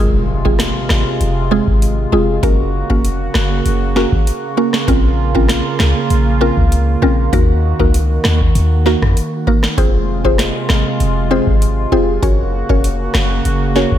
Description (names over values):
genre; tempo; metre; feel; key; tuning
dancehall; 98 BPM; 4/4; straight; F phrygian; A4 = 440 Hz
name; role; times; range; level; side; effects
mallet-like synth pluck; accompaniment; 0.0-13.9 s; Ab3 to Db5; -18 LUFS; equal; chorus, phaser
warm analog pad; sustained chords; 0.0-14.0 s; C3 to Gb4; -20 LUFS; right 2 dB; chorus, sidechain pumping
clean 808-style bass; bass; 0.0-14.0 s; F1 to F2; -16 LUFS; equal; none
impact; sound effects; 0.0-2.4 s; none; -26 LUFS; equal; none
booming analog drum machine; drums; 0.5-14.0 s; hi-hat, kick drum, rim click, snare drum; -16 LUFS; equal; none
room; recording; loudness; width
light reverb; none; -12 LUFS; side -11 dB against mid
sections
0.0-14.0 A section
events
impact 0.0-2.4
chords
0.0 Fm; 2.4 Gb; 4.9 Bbmadd9; 7.3 Ebm; 9.8 Fm; 12.2 Gb